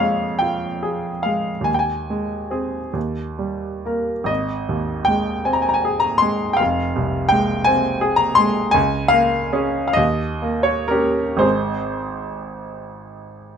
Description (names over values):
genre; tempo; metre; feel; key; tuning
classical, romantic nocturne for solo piano; 39-58 BPM (dotted quarters); 6/8; rubato; Ab major; A4 = 440 Hz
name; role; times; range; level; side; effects
clear baby grand piano; solo; 0.0-13.6 s; F1 to C6; -18 LUFS; equal; none
room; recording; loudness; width
light reverb; none; -18 LUFS; side -7 dB against mid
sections
0.0-13.6 A section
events
none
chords
0.0 Db/F; 1.7 Ab/Eb; 3.0 Eb; 4.3 Ab; 6.6 Fm; 8.8 Bbm7/Db; 10.0 Eb7; 11.4 Ab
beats
0.42 | 1.68 2.95 | 4.29 5.47 | 6.60 7.69 | 8.76 9.98 | 11.43 12.91